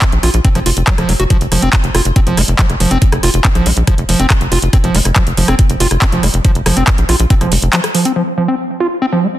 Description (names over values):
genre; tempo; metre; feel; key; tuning
psychedelic trance; 140 BPM; 4/4; straight; F major; A4 = 441 Hz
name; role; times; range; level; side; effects
electronic kick drum; drums; 0.0-7.4 s; none; -12 LUFS; equal; none
garage drum kit; drums; 0.0-8.1 s; handclaps, hi-hat, rim click; -17 LUFS; equal; none
tight sequencer bass; bass; 0.1-7.7 s; F1 to Bb1; -14 LUFS; equal; none
overdriven acid bass; riff; 0.2-9.3 s; F3 to Gb4; -16 LUFS; right 1 dB; auto-pan, sidechain pumping, dub echo
room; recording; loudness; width
light reverb; dense, heavily limited modern master; -10 LUFS; side -14 dB against mid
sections
0.0-8.2 A section; 8.2-9.4 B section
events
kick drops out 7.7-8.2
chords
0.0 F5